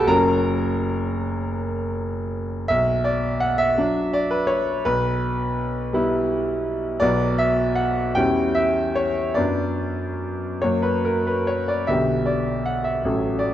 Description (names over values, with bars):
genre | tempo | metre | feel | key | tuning
classical, romantic character piece for solo piano | 45-57 BPM (dotted quarters) | 6/8 | rubato | B minor | A4 = 435 Hz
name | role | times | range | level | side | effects
bright grand piano | solo | 0.0-13.5 s | F#1 to A#5 | -20 LUFS | equal | none
room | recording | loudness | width
moderate concert hall reverb, RT60 1.9 s | dark, warm production, nothing above 7.9 kHz | -20 LUFS | side -11 dB against mid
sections
0.0-2.7 A section; 2.7-13.5 B section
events
none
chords
0.1 F#; 2.7 Bm; 4.8 Em/B; 7.0 B5; 8.2 C#dim/E; 9.4 Bm/F#; 10.6 F#; 11.9 G/B; 13.0 F#m/A